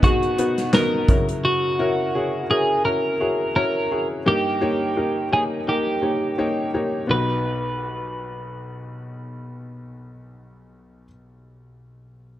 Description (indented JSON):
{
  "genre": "piano-driven pop",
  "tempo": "85 BPM",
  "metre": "4/4",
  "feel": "swing 56% on 16ths",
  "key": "B major",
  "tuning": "A4 = 439 Hz",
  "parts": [
    { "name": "twelve-string electric guitar", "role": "melody", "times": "0.0-11.1 s", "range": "F#4 to B4", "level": "-23 LUFS", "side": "right 1 dB", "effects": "none" },
    { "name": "bright upright piano", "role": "accompaniment", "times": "0.0-12.4 s", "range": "B1 to C#5", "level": "-24 LUFS", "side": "left 2 dB", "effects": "none" },
    { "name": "natural country drum kit", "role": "drums", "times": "0.0-1.4 s", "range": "handclaps, hi-hat, kick drum, snare drum", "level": "-20 LUFS", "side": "equal", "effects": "none" }
  ],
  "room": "light reverb, studio ambience",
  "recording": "dark, warm production",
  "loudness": "-19 LUFS",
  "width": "side -13 dB against mid",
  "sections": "0.0-7.1 A section; 7.1-9.9 B section",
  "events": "none",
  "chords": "0.0 B; 1.1 F#7; 4.3 D#/G; 7.1 B"
}